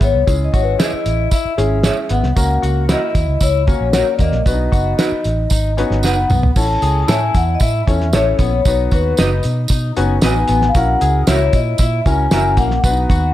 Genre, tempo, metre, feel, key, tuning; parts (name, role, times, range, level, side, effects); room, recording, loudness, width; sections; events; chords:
uptempo 1960s-style soul; 115 BPM; 4/4; straight; A4 = 440 Hz
vibraphone with soft mallets; melody; 0.0-13.3 s; B4 to A5; -20 LUFS; left 3 dB; tape echo
electric guitar through a small old amp; riff; 0.0-13.3 s; A#3 to G#4; -25 LUFS; left 9 dB; wide subtle chorus
vintage muted fingered electric bass; bass; 0.0-13.3 s; F#1 to B2; -18 LUFS; equal
cloth-damped thuddy drum kit; drums; 0.0-13.2 s; crash cymbal, hi-hat, kick drum, snare drum, toms; -17 LUFS; equal
tambourine; percussion; 0.0-13.2 s; -30 LUFS; right 5 dB
warm concert grand piano; accompaniment; 0.3-13.3 s; G#3 to C#5; -23 LUFS; left 2 dB
electric guitar through a small old amp; stabs; 0.8-12.4 s; C#4 to F#5; -24 LUFS; right 5 dB; spring reverb
light reverb, small room ambience; dark, warm production; -13 LUFS; side -13 dB against mid
0.0-6.6 A section; 6.6-13.3 B section
drum fill 6.0-6.6
0.3 C#m; 2.4 F#/C#; 4.5 B; 6.6 A; 8.7 B; 10.8 F#7/A#; 12.8 B